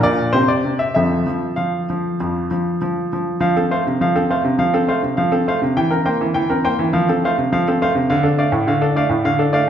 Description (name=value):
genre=classical-period piano sonatina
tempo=101 BPM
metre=4/4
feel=uneven beats, rubato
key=F major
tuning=A4 = 439 Hz
part: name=bright baby grand piano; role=solo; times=0.0-9.7 s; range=F2 to G5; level=-16 LUFS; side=equal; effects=none
room=wet recital hall reverb, RT60 1.7 s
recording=recorded in a church or concert hall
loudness=-16 LUFS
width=side -9 dB against mid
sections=0.0-3.4 A section; 3.4-9.7 B section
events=none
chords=0.4 C5; 1.0 F; 5.8 C7/E; 6.9 F; 8.1 Dm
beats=0.36 | 0.96 1.58 2.20 2.81 | 3.42 4.01 4.60 5.18 | 5.76 6.35 6.94 7.52 | 8.10 8.68 9.26